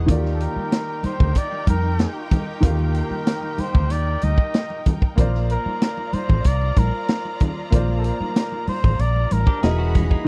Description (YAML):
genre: lush 1970s-style soul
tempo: 94 BPM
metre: 4/4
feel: straight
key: Bb major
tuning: A4 = 438 Hz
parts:
  - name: rich studio string section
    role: second line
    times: 0.0-10.3 s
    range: Eb4 to B5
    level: -37 LUFS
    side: equal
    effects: slapback echo
  - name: warm baby grand piano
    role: accompaniment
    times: 0.0-10.3 s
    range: Eb3 to F5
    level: -30 LUFS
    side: equal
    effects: none
  - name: warm woodwind section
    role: sustained chords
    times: 0.0-10.3 s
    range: Eb3 to D#5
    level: -41 LUFS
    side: equal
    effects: none
  - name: vintage muted fingered electric bass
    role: bass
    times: 0.0-10.1 s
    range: E1 to F2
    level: -24 LUFS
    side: equal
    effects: none
  - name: vintage drum kit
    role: drums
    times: 0.1-10.3 s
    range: hi-hat, kick drum, snare drum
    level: -21 LUFS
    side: equal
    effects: none
  - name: congas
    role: percussion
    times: 0.1-10.1 s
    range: none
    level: -31 LUFS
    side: equal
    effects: none
  - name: warm flugelhorn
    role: melody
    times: 0.3-10.0 s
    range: A4 to Eb5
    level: -30 LUFS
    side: equal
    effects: none
  - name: electric guitar at the edge of break-up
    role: riff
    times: 9.5-10.3 s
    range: G#3 to G#4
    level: -33 LUFS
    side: equal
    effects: none
room: little or no reverb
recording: dry, close 1970s-style studio recording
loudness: -21 LUFS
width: mono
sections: 0.0-10.3 A section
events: none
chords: 0.1 Ebmaj9; 5.2 Bb; 9.6 Emaj9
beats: | 0.09 0.72 1.36 2.00 | 2.63 3.27 3.90 4.54 | 5.18 5.81 6.45 7.09 | 7.72 8.36 8.99 9.63 | 10.27